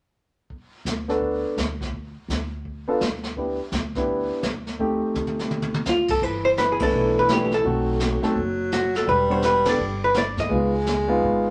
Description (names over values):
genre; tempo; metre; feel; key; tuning
jazz, small-group swing and bop; 168 BPM; 4/4; swing 64% on 8ths; G major; A4 = 440 Hz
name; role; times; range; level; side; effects
jazz brush drum kit; drums; 0.5-11.5 s; brushed snare drum, crash cymbal, hi-hat, kick drum, ride cymbal, snare drum, toms; -32 LUFS; equal; none
upright bass; bass; 0.9-11.5 s; E1 to Ab2; -33 LUFS; equal; none
warm concert grand piano; accompaniment; 1.1-11.5 s; G3 to A4; -26 LUFS; equal; none
archtop guitar, miked and amplified; melody; 5.9-11.1 s; F4 to Eb5; -24 LUFS; equal; none
breathy baritone saxophone; second line; 6.2-11.5 s; E3 to G#3; -30 LUFS; equal; none
room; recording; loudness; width
wet studio reverb, RT60 0.8 s; none; -23 LUFS; mono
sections
0.5-6.2 A section; 6.2-11.5 B section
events
drum fill 5.1-5.9; band accent 6.8, 9.6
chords
0.5 D6; 1.9 N.C.; 2.6 Dm6; 3.4 G6/D; 4.8 F13/D (rootless); 6.2 G6; 7.6 B7b9; 9.1 Em7; 10.5 C#9